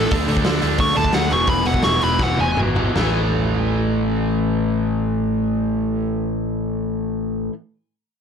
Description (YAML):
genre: punk rock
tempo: 153-180 BPM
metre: 4/4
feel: straight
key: unclear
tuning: A4 = 440 Hz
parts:
  - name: high-gain lead guitar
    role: melody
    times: 0.0-2.6 s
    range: A4 to C#6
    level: -22 LUFS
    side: equal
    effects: distortion, ping-pong delay
  - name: overdriven electric guitar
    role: riff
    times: 0.0-7.5 s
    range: E2 to D4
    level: -21 LUFS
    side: left 1 dB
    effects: none
  - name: picked electric bass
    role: bass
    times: 0.0-7.5 s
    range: E1 to D2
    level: -24 LUFS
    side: equal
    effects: none
  - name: raw garage drum kit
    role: drums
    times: 0.1-3.0 s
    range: hi-hat, kick drum, snare drum, toms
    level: -22 LUFS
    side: equal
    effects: none
room: little or no reverb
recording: none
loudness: -17 LUFS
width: side -7 dB against mid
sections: 0.0-3.0 A section; 3.0-6.1 B section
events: lead electric guitar solo 0.0-3.0; slowing down 0.1-3.0; drum fill 2.2-3.0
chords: 0.1 D5; 1.3 E; 3.0 A5